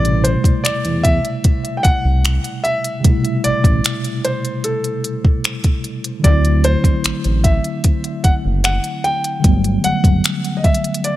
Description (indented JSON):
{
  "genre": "contemporary R&B",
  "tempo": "75 BPM",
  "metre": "4/4",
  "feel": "straight",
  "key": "A dorian",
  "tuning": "A4 = 440 Hz",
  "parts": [
    { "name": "warm grand piano", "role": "melody", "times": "0.0-11.2 s", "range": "A4 to G5", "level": "-22 LUFS", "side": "equal", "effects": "tape echo" },
    { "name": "mellow tine electric piano", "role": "accompaniment", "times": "0.0-11.2 s", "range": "B2 to E4", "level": "-20 LUFS", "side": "equal", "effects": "medium stereo tremolo" },
    { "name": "smooth gliding synth bass", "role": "bass", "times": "0.0-10.2 s", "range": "F#1 to E2", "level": "-17 LUFS", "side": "equal", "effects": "none" },
    { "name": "smooth R&B drum kit", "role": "drums", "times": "0.1-11.2 s", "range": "finger snaps, hi-hat, kick drum", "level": "-16 LUFS", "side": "equal", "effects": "none" }
  ],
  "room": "digital ambience",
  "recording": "none",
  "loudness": "-14 LUFS",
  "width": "side -14 dB against mid",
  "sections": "0.0-11.2 A section",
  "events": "none",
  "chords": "0.0 Am7; 6.2 D7; 9.4 Gmaj7"
}